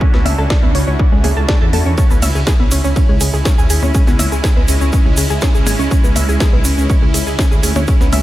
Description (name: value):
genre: melodic techno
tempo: 122 BPM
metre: 4/4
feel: straight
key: C# phrygian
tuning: A4 = 440 Hz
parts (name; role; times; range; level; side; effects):
- evolving wavetable pad; sustained chords; 0.0-8.2 s; G#3 to F#4; -22 LUFS; right 1 dB; phaser, built-in reverb, sidechain pumping
- warbly dusty pluck; arpeggios; 0.0-8.2 s; G#3 to E6; -21 LUFS; equal; chorus, sidechain pumping, analog delay
- electronic kick drum; drums; 0.0-8.0 s; none; -13 LUFS; equal; none
- dark detuned saw bass; bass; 0.1-8.2 s; G#1 to E2; -17 LUFS; equal; sidechain pumping
- techno drum kit; drums; 0.1-8.2 s; hi-hat, percussion blips, ride cymbal, snare drum; -22 LUFS; equal; none
- tube shaker; percussion; 2.0-8.2 s; none; -26 LUFS; right 2 dB; none
room: light reverb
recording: none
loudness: -11 LUFS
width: side -15 dB against mid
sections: 0.0-8.2 A section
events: none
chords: 0.0 Dadd9; 2.0 C#m